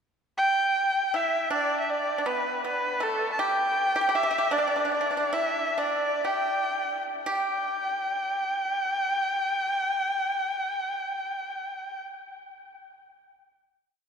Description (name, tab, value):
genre	chinese traditional, Chinese chamber ensemble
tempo	54-81 BPM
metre	2/4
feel	rubato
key	G gong mode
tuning	A4 = 440 Hz
part	warm erhu	melody	0.4-12.0 s	A4 to A5	-26 LUFS	equal	none
part	pipa	second line	1.1-12.0 s	A3 to G4	-30 LUFS	right 2 dB	none
room	wet cathedral reverb, RT60 6.1 s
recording	recorded in a church or concert hall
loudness	-24 LUFS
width	side -6 dB against mid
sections	0.0-0.8 pickup bar; 0.8-7.3 A section; 7.3-11.6 final note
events	slowing down 3.8-7.3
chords	none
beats	| 0.75 1.52 | 2.27 3.01 | 3.75 4.51 | 5.32 6.22 | 7.26 8.35 | 9.43 10.49